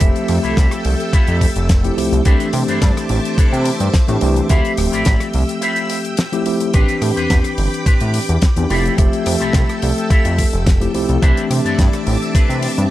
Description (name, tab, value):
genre	nu-disco, nu disco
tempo	107 BPM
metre	4/4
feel	straight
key	unclear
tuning	A4 = 440 Hz
part	mellow tine electric piano	accompaniment	0.0-12.9 s	E3 to E5	-20 LUFS	equal	medium stereo tremolo, sidechain pumping, tape echo
part	string machine, full ensemble	sustained chords	0.0-12.9 s	C4 to E6	-26 LUFS	equal	ensemble chorus, sidechain pumping
part	electric guitar with an envelope filter	riff	0.0-12.7 s	C4 to D5	-24 LUFS	left 1 dB	lush chorus, tape echo
part	fat analog bass	bass	0.0-12.9 s	D1 to C3	-18 LUFS	equal	none
part	damped 70s drum kit	drums	0.0-12.9 s	hi-hat, rim click, snare drum	-24 LUFS	left 2 dB	none
part	electronic kick drum	drums	0.0-12.5 s	none	-14 LUFS	equal	overdrive
room	small room ambience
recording	none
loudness	-13 LUFS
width	side -14 dB against mid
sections	0.0-12.9 A section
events	break 5.6-6.7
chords	0.0 Fmaj9; 2.3 C69; 4.5 Dm11; 6.7 Am11; 8.7 Fmaj9; 11.2 C69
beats	| 0.01 0.57 1.13 1.69 | 2.25 2.81 3.38 3.94 | 4.50 5.06 5.62 6.18 | 6.74 7.30 7.86 8.42 | 8.98 9.54 10.11 10.67 | 11.23 11.79 12.35